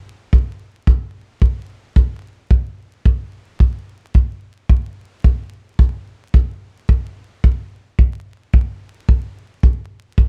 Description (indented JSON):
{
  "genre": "blues",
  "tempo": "110 BPM",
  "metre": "4/4",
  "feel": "swing 61% on 8ths",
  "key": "none",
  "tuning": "none",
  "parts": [
    { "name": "kick drum", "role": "drums", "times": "0.3-10.3 s", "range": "none", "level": "-15 LUFS", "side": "equal", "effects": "none" }
  ],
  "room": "little or no reverb",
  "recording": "dark, warm production, vinyl crackle",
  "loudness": "-19 LUFS",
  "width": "mono",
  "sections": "0.0-10.3 A section",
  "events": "none",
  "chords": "none"
}